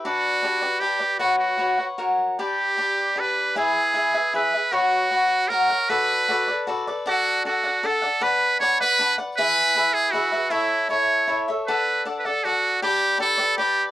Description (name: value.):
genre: mexican folk, mariachi.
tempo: 156 BPM.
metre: 3/4.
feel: rubato.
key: B minor, D major from 7.1 s.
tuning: A4 = 440 Hz.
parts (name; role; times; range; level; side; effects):
trumpet with metal mute; melody; 0.0-13.8 s; E4 to C#5; -21 LUFS; right 2 dB; cassette tape.
cavaquinho; accompaniment; 0.0-13.9 s; D4 to F#5; -24 LUFS; left 2 dB; cassette tape.
room: moderate booth ambience, RT60 0.2 s.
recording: home recording on cassette.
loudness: -19 LUFS.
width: side -14 dB against mid.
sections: 0.0-7.1 A section; 7.1-13.9 B section.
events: none.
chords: 0.0 G; 1.2 F#sus4; 2.0 F#; 2.4 G; 3.6 E; 4.7 F#sus4; 5.5 F#; 5.9 Bm7; 7.1 D; 8.2 Bm; 9.4 E; 10.5 A; 11.7 D; 12.8 G.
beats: | 0.04 0.42 0.81 | 1.20 1.59 1.98 | 2.38 2.78 3.17 | 3.56 3.95 4.34 | 4.72 5.11 5.50 | 5.88 6.27 6.67 | 7.06 7.45 7.84 | 8.22 8.61 8.98 | 9.36 9.74 10.12 | 10.50 10.89 11.27 | 11.66 12.05 12.44 | 12.82 13.20 13.57.